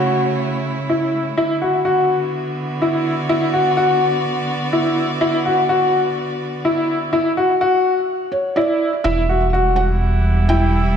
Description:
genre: piano and strings electronica.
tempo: 125 BPM.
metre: 4/4.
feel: straight.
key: B minor.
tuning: A4 = 440 Hz.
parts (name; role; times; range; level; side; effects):
rich string quartet; sustained chords; 0.0-11.0 s; C#3 to E5; -23 LUFS; right 2 dB; shimmer reverb.
warm upright piano; riff; 0.0-10.8 s; E4 to F#4; -17 LUFS; left 1 dB; shimmer reverb, digital delay.
felt-muted upright piano; melody; 8.3-11.0 s; C#5 to G5; -22 LUFS; right 3 dB; shimmer reverb, digital delay.
dark detuned saw bass; bass; 9.1-11.0 s; E1; -17 LUFS; right 1 dB; none.
room: wet concert hall reverb, RT60 1.8 s, small room ambience.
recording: dark, warm production.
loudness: -16 LUFS.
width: side -8 dB against mid.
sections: 0.0-9.1 A section; 9.1-11.0 B section.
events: build-up 0.0-9.1; drop 9.1-11.0.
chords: 0.0 A; 1.4 Bm; 9.1 Emadd9.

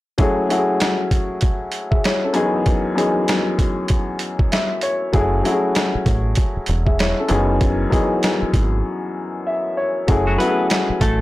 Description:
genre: hip hop, boom-bap hip-hop.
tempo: 97 BPM.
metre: 4/4.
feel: swing 60% on 16ths.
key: F# dorian.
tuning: A4 = 439 Hz.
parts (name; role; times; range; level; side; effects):
warm upright piano; accompaniment; 0.2-11.2 s; F#2 to E5; -19 LUFS; left 1 dB; high-pass filter, low-pass filter, plate reverb.
boom bap sampler-style drum kit; drums; 0.2-11.2 s; hi-hat, kick drum, snare drum; -20 LUFS; equal; none.
deep dub fingered electric bass; bass; 5.1-11.2 s; E1 to A1; -20 LUFS; equal; tube saturation.
clean electric guitar; melody; 10.3-11.2 s; F#3 to B4; -22 LUFS; equal; high-pass filter, low-pass filter, plate reverb, digital delay.
room: moderate studio reverb, RT60 0.7 s.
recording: blown-out, overdriven recording, overdrive.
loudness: -17 LUFS.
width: side -17 dB against mid.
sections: 0.2-10.1 A section; 10.1-11.2 B section.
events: upright piano fill 4.2-5.1; break 8.8-10.1.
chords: 0.2 F#m7; 2.4 C#m7/F#; 5.1 F#m7; 7.3 C#m7/F#; 10.1 F#m7.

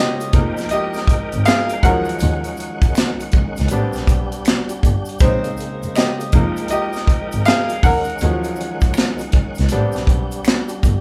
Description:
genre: R&B, neo-soul.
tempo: 80 BPM.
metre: 4/4.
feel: swing 64% on 16ths.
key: unclear.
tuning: A4 = 435 Hz.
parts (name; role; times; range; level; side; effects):
bright upright piano; accompaniment; 0.0-11.0 s; F3 to Gb5; -24 LUFS; equal; none.
tonewheel organ; sustained chords; 0.0-11.0 s; Db3 to G5; -31 LUFS; equal; slow rotary speaker, overdrive, chorus vibrato.
tight funk drum kit; drums; 0.2-11.0 s; hi-hat, kick drum, snare drum; -19 LUFS; equal; none.
tube shaker and finger snaps; percussion; 0.2-11.0 s; none; -38 LUFS; equal; none.
dark double bass; bass; 0.3-10.9 s; F1 to Eb2; -24 LUFS; equal; none.
room: light reverb.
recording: band playing live in one room.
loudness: -18 LUFS.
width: mono.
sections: 0.0-11.0 A section.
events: upright piano solo 0.0-11.0.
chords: 0.3 Fm11; 1.8 Ebm11; 3.7 Am11 (rootless); 5.2 Bbm11; 6.3 Fm11; 7.8 Ebm11; 9.7 Am11 (rootless).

